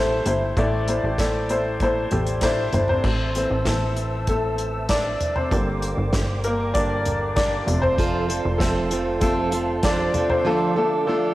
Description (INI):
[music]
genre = piano-driven pop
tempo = 97 BPM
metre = 4/4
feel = straight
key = unclear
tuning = A4 = 439 Hz
[part]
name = clear upright piano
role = accompaniment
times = 0.0-11.3 s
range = A2 to D5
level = -22 LUFS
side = left 1 dB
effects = cassette tape
[part]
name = plucky analog bass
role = bass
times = 0.0-10.1 s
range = F1 to A1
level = -26 LUFS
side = equal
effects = none
[part]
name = unplugged drum kit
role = drums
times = 0.3-10.4 s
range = crash cymbal, hi-hat, kick drum, snare drum, toms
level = -26 LUFS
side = equal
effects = cassette tape
[part]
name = mellow tonewheel organ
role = sustained chords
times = 3.0-11.3 s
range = F3 to E6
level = -32 LUFS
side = right 2 dB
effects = chorus vibrato, stopped rotary speaker, cassette tape
[part]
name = fingerpicked plugged-in steel-string acoustic guitar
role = riff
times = 8.0-11.3 s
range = F3 to A4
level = -24 LUFS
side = right 3 dB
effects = cassette tape
[sound]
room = moderate lush hall reverb, RT60 1.9 s, studio reverb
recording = home recording on cassette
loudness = -20 LUFS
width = side -16 dB against mid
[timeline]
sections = 0.0-3.0 A section; 3.0-11.3 B section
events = upright piano solo 3.0-11.3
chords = 0.0 Am; 5.5 Gm; 7.7 F; 10.5 Dm